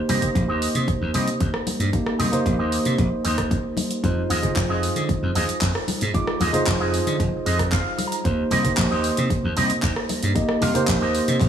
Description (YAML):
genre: nu-disco, nu disco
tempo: 114 BPM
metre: 4/4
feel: straight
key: unclear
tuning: A4 = 441 Hz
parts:
  - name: tine electric piano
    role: accompaniment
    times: 0.0-11.5 s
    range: Ab3 to D6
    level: -24 LUFS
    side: right 1 dB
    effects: sidechain pumping, digital delay
  - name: electric guitar with an envelope filter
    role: riff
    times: 0.1-11.3 s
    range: F4 to Bb5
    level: -28 LUFS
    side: right 2 dB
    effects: analog chorus, vintage 12-bit sampler grit, low-pass filter, digital delay
  - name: slap bass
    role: bass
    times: 0.1-11.5 s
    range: F1 to D3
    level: -24 LUFS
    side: equal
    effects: none
  - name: pop drum kit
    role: drums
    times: 0.1-11.5 s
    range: handclaps, hi-hat, rim click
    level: -28 LUFS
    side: right 1 dB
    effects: none
  - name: congas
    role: percussion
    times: 0.1-10.9 s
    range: none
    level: -30 LUFS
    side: left 3 dB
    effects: none
  - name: electronic kick drum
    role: drums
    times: 0.2-11.5 s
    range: none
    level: -25 LUFS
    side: equal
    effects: none
room: light reverb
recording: small room ambience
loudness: -20 LUFS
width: side -9 dB against mid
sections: 0.0-11.5 A section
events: clean electric guitar fill 7.2-8.3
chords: 0.0 Eb6; 4.0 Fm7; 8.3 Eb6